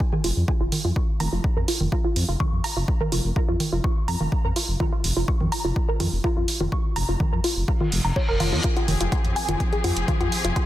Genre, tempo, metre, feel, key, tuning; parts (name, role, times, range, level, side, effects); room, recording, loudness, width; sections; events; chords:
melodic techno; 125 BPM; 4/4; straight; A4 = 439 Hz
electronic kick drum; drums; 0.0-10.7 s; -24 LUFS; equal; overdrive
analog pluck; arpeggios; 0.1-10.7 s; F4 to Db6; -28 LUFS; equal; chorus, sidechain pumping, dub echo
electronic congas, hi-hat and woodblock; drums; 0.1-10.7 s; -28 LUFS; right 2 dB; overdrive, sidechain pumping on hats, sidechain pumping on perc
swelling detuned saw bass; bass; 0.2-10.5 s; F1 to F2; -25 LUFS; equal; tube saturation, sidechain pumping
reverse cymbal; sound effects; 7.9-8.6 s; -30 LUFS; left 1 dB
muted studio string section; sustained chords; 8.6-10.7 s; F3 to Ab4; -29 LUFS; left 3 dB; sidechain pumping
moderate recital hall reverb, RT60 1.5 s; dense, heavily limited modern master; -21 LUFS; side -14 dB against mid
0.0-10.7 A section
reverse cymbal 7.9-8.6
0.0 N.C.; 1.0 Bb5/F; 8.6 Fm